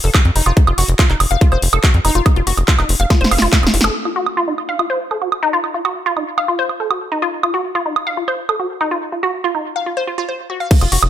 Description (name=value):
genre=psychedelic trance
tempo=142 BPM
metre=4/4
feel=straight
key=unclear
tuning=A4 = 439 Hz
part: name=woody wave-folded pluck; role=riff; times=0.0-11.0 s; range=Eb4 to F5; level=-19 LUFS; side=equal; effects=chorus, auto-pan, vintage 12-bit sampler grit, sidechain pumping, tape echo
part: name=tight sequencer bass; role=bass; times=0.0-3.9, 10.8-11.1 s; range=Eb1 to F2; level=-16 LUFS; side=equal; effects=none
part: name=big-room dance drum kit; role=drums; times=0.0-11.1 s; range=crash cymbal, handclaps, hi-hat, snare drum, woodblock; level=-18 LUFS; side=right 3 dB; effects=studio reverb
part: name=electronic kick drum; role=drums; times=0.1-3.6, 10.7-10.8 s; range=none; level=-12 LUFS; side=equal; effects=studio reverb
room=light reverb, digital ambience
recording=none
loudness=-14 LUFS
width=side -11 dB against mid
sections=0.0-3.9 A section; 3.9-10.7 B section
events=drop 0.0-3.9; drum fill 3.1-3.9; band accent 3.8; filter sweep on synth arpeggio sound 3.9-10.7; break 9.0-10.7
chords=0.0 F5